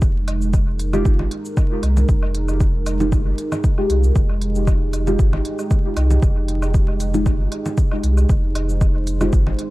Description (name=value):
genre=dub techno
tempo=116 BPM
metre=4/4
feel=swing 54% on 16ths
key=F minor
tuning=A4 = 438 Hz
part: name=dark analog pad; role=sustained chords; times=0.0-9.7 s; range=Ab3 to C5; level=-27 LUFS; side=right 3 dB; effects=chorus, sidechain pumping
part: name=warm sub bass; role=bass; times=0.0-9.5 s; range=F1 to C2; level=-20 LUFS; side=equal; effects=sidechain pumping
part: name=electronic cabasa and hi-hat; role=drums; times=0.0-9.7 s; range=none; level=-37 LUFS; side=equal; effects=none
part: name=electronic kick drum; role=drums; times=0.0-9.4 s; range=none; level=-17 LUFS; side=equal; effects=none
part: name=woodblock and congas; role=percussion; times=0.3-9.6 s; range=none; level=-31 LUFS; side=equal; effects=sidechain pumping on perc, dub echo
part: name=deep mellow chord stab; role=stabs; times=0.9-9.4 s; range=Ab3 to G4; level=-24 LUFS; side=left 1 dB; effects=chorus, phaser, vintage 12-bit sampler grit, sidechain pumping, dub echo
room=digital ambience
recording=dark, warm production, vinyl crackle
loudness=-16 LUFS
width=side -18 dB against mid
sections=0.0-9.7 A section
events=none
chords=0.0 Fm9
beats=| 0.02 0.54 1.05 1.57 | 2.09 2.60 3.12 3.64 | 4.16 4.67 5.19 5.71 | 6.23 6.74 7.26 7.78 | 8.29 8.81 9.33